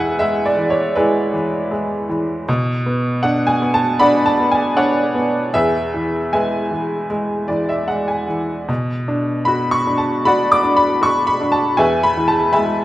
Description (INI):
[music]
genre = classical, lyrical solo piano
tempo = 78 BPM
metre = 4/4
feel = rubato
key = B dorian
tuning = A4 = 440 Hz
[part]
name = bright upright piano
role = solo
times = 0.0-12.8 s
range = E2 to D6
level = -15 LUFS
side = equal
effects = none
[sound]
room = moderate recital hall reverb, RT60 1.4 s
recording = none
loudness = -15 LUFS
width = side -15 dB against mid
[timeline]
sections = 0.0-12.8 A section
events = upright piano fill 7.1-8.7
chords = 0.0 E; 2.5 Bmadd9; 5.5 E; 8.7 Bm; 11.8 E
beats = 0.20 0.96 1.72 | 2.48 3.23 3.99 4.76 | 5.54 6.32 7.09 7.88 | 8.69 9.48 10.26 11.03 | 11.80 12.55